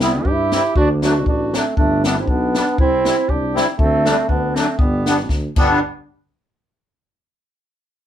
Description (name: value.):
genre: alpine folk, alpine dance band.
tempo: 119 BPM.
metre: 2/4.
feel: swing 53% on 8ths.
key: G major.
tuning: A4 = 440 Hz.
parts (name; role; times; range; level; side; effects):
clear euphonium; melody; 0.0-5.3 s; G3 to E4; -21 LUFS; right 2 dB; none.
bright clarinet; second line; 0.0-5.3 s; B3 to G4; -23 LUFS; right 2 dB; none.
musette accordion; accompaniment; 0.0-5.8 s; F#3 to E4; -20 LUFS; left 2 dB; none.
mellow tuba; bass; 0.0-5.8 s; G1 to G2; -22 LUFS; equal; none.
compact cocktail drum kit; drums; 0.0-5.7 s; crash cymbal, hi-hat, kick drum, snare drum; -19 LUFS; left 1 dB; none.
room: moderate small room reverb, RT60 0.5 s.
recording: band playing live in one room.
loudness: -15 LUFS.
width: side -10 dB against mid.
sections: 0.0-5.8 A section; 5.8-6.8 B section.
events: drum fill 5.3-5.8.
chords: 0.0 C; 0.8 D; 1.8 G; 2.8 C; 3.8 D7sus4; 4.3 D7; 4.8 G; 5.8 N.C..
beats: 0.25 | 0.76 1.27 | 1.77 2.28 | 2.79 3.29 | 3.79 4.29 | 4.79 5.30.